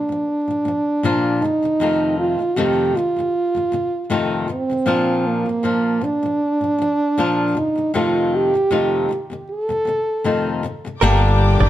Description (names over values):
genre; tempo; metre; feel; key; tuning
acoustic pop; 78 BPM; 4/4; swing 55% on 16ths; unclear; A4 = 440 Hz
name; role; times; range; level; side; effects
mellow French horn; melody; 0.0-10.6 s; Bb3 to A4; -19 LUFS; right 2 dB; tape echo
flamenco guitar; accompaniment; 0.0-11.7 s; F2 to G4; -21 LUFS; left 4 dB; none
warm studio string section; sustained chords; 11.0-11.7 s; Bb4 to D6; -26 LUFS; left 5 dB; none
direct-recorded clean electric guitar; arpeggios; 11.0-11.7 s; Bb4 to D5; -22 LUFS; right 7 dB; spring reverb
fretless electric bass; bass; 11.0-11.7 s; G1; -14 LUFS; equal; none
room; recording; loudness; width
light reverb; dark, warm production; -17 LUFS; side -13 dB against mid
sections
0.0-11.0 A section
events
none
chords
0.0 Bb; 1.4 F7; 4.9 Bb; 7.6 F7; 11.0 Gm